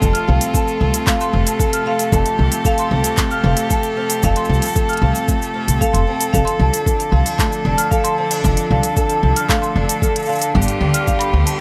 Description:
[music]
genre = folktronica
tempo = 114 BPM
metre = 4/4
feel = straight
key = F major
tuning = A4 = 438 Hz
[part]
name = bright string quartet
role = sustained chords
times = 0.0-11.6 s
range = C3 to A4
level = -26 LUFS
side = equal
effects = none
[part]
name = fingerpicked twelve-string acoustic guitar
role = arpeggios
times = 0.0-11.6 s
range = F2 to A4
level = -23 LUFS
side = equal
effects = tape echo
[part]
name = upright bass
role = bass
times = 0.0-11.4 s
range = F1 to D2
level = -19 LUFS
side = equal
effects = none
[part]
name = electronic kick drum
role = drums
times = 0.0-11.2 s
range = none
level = -21 LUFS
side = equal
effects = overdrive
[part]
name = organic electronic drum kit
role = drums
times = 0.0-11.6 s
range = cabasa, handclaps, hi-hat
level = -25 LUFS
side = equal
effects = overdrive
[part]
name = marimba with medium hard mallets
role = second line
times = 0.1-11.6 s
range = F5 to F6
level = -26 LUFS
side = equal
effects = tape echo
[sound]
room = light reverb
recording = none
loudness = -17 LUFS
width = mono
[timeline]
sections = 0.0-11.6 A section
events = none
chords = 0.0 F; 6.3 Dm/F; 10.5 G7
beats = | 0.02 0.55 1.07 1.60 | 2.13 2.65 3.18 3.71 | 4.23 4.76 5.28 5.81 | 6.34 6.86 7.39 7.92 | 8.44 8.97 9.49 10.02 | 10.55 11.07 11.60

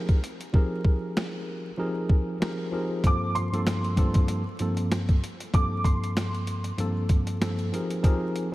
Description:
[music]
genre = hip hop, boom-bap hip-hop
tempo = 96 BPM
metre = 4/4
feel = swing 56% on 16ths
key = G minor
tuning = A4 = 440 Hz
[part]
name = mellow tine electric piano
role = accompaniment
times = 0.0-8.5 s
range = G2 to Bb4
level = -28 LUFS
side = equal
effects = medium stereo tremolo, cassette tape
[part]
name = boom bap sampler-style drum kit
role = drums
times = 0.1-8.5 s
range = hi-hat, kick drum, snare drum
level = -25 LUFS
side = equal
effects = none
[part]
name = dark upright piano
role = melody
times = 3.1-6.9 s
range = C6 to D6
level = -33 LUFS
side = right 2 dB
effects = ensemble chorus, diffuse ambient delay
[sound]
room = light reverb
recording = vinyl crackle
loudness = -24 LUFS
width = side -18 dB against mid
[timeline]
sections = 0.0-8.5 A section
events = hi-hats muted 0.5-3.0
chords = 0.0 Fm11; 3.0 Gm11; 7.7 Fm11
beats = | 0.54 1.16 1.79 2.41 | 3.04 3.66 4.29 4.91 | 5.54 6.16 6.79 7.41 | 8.04

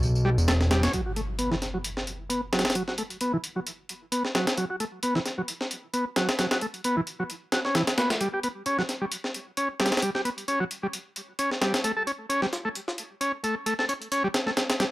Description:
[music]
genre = breakbeat, breaks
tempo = 132 BPM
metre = 4/4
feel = swing 55% on 16ths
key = unclear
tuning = A4 = 439 Hz
[part]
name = fat analog bass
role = bass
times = 0.0-0.9 s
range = E1 to B1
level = -22 LUFS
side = equal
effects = tube saturation
[part]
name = tambourine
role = drums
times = 0.0-0.9 s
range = none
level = -38 LUFS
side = equal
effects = small room ambience
[part]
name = combo organ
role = riff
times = 0.2-14.8 s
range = E3 to A4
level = -27 LUFS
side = equal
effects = tube saturation, low-pass filter, analog delay
[part]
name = breakbeat sampler-style drum kit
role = drums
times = 0.5-14.9 s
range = hi-hat, snare drum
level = -27 LUFS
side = equal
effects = high-pass filter on hats, small room ambience, high-pass filter on kick, high-pass filter on snare
[part]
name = impact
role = sound effects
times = 0.9-2.8 s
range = none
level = -36 LUFS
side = equal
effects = none
[sound]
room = light reverb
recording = dry, gritty hardware recording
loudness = -25 LUFS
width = side -17 dB against mid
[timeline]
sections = 0.9-14.9 A section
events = impact 0.9-2.8; filter sweep on transistor combo organ 0.9-14.9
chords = 0.0 A7 (rootless); 0.9 N.C.; 8.2 G(b5, no3); 11.8 A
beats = 0.03 0.48 | 0.94 1.39 1.84 2.30 | 2.75 3.21 3.66 4.12 | 4.57 5.03 5.48 5.94 | 6.39 6.84 7.30 7.75 | 8.21 8.66 9.12 9.57 | 10.03 10.48 10.94 11.39 | 11.85 12.30 12.75 13.21 | 13.66 14.12 14.57

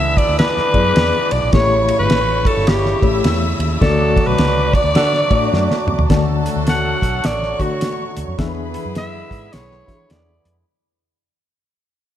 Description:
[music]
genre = uptempo 1960s-style soul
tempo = 105 BPM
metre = 4/4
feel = swing 62% on 8ths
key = D major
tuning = A4 = 442 Hz
[part]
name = growling alto saxophone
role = melody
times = 0.0-10.6 s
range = F#4 to F#5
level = -19 LUFS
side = equal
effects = none
[part]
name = rich studio string section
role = second line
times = 0.0-10.6 s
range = A4 to E6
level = -25 LUFS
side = left 1 dB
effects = none
[part]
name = reed electric piano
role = accompaniment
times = 0.0-10.3 s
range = A2 to E5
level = -23 LUFS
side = left 5 dB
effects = fast tremolo
[part]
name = hand-pumped harmonium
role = sustained chords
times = 0.0-10.6 s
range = C#3 to F#4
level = -26 LUFS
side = right 3 dB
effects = none
[part]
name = vintage muted fingered electric bass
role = bass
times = 0.0-10.6 s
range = G1 to E3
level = -22 LUFS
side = right 1 dB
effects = none
[part]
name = cloth-damped thuddy drum kit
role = drums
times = 0.2-10.6 s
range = hi-hat, kick drum, ride cymbal, snare drum, toms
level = -19 LUFS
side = right 1 dB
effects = none
[part]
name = mellow saxophone section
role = second line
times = 4.9-10.4 s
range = D4 to B4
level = -29 LUFS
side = right 3 dB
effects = none
[sound]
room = moderate concert hall reverb, RT60 1.9 s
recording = none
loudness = -14 LUFS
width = side -11 dB against mid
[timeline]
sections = 0.0-6.1 A section; 6.1-10.7 B section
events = band accent 3.8-6.1; drum fill 5.5-6.1; fade-out 6.1-10.7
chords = 0.0 E7; 1.5 A7; 3.8 D; 8.4 E7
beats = 0.39 0.96 | 1.53 2.10 2.67 3.24 | 3.81 4.38 4.96 5.53 | 6.10 6.67 7.24 7.81 | 8.38 8.95 9.52 10.10

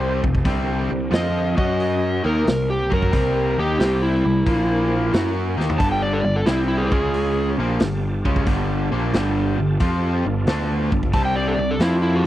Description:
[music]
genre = blues rock power trio and southern rock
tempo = 90 BPM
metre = 4/4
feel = swing 68% on 8ths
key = unclear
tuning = A4 = 440 Hz
[part]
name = overdriven slide guitar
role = melody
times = 0.0-12.3 s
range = E4 to A5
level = -22 LUFS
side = equal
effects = none
[part]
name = overdriven tonewheel organ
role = sustained chords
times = 0.0-12.2 s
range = D3 to A5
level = -34 LUFS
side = right 2 dB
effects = none
[part]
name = crunchy overdriven guitar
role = riff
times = 0.0-12.2 s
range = F2 to F#4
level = -23 LUFS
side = left 1 dB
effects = none
[part]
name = fuzz picked electric bass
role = bass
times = 0.0-12.2 s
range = F1 to F#2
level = -24 LUFS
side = equal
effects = overdrive
[part]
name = vintage drum kit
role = drums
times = 0.2-12.0 s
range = hi-hat, kick drum, snare drum, toms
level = -22 LUFS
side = equal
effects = none
[sound]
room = small room ambience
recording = dry, close 1970s-style studio recording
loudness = -18 LUFS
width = side -14 dB against mid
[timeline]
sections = 0.0-12.3 A section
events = drum fill 5.5-5.8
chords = 0.5 C5; 1.5 F#5; 2.1 C5; 4.5 Bb5; 5.1 Ebm7; 5.8 G7; 6.8 Db5; 7.5 G7; 11.1 C7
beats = | 0.45 1.12 1.79 2.46 | 3.12 3.79 4.46 5.13 | 5.79 6.46 7.13 7.80 | 8.47 9.13 9.80 10.47 | 11.13 11.80

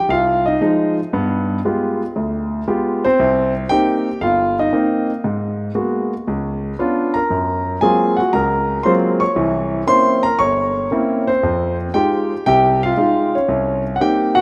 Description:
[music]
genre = solo jazz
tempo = 116 BPM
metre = 4/4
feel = swing 69% on 8ths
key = F minor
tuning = A4 = 439 Hz
[part]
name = warm concert grand piano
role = solo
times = 0.0-14.4 s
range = G1 to Db6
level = -18 LUFS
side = equal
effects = none
[sound]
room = moderate lush hall reverb, RT60 2.8 s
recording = rough home demo mix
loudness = -18 LUFS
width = mono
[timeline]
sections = 0.0-14.4 A section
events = none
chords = 0.0 Fm7; 1.1 G7b9; 3.2 Cm7; 5.2 Abm9; 6.3 Db7b9; 7.3 Gbmaj9#11; 9.4 C7b9; 11.4 Fm7; 13.5 Cm7b5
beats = 0.10 0.61 | 1.13 1.64 2.15 2.67 | 3.18 3.70 4.21 4.73 | 5.24 5.76 6.27 6.79 | 7.30 7.82 8.33 8.85 | 9.36 9.88 10.39 10.91 | 11.42 11.94 12.46 12.97 | 13.49 14.00

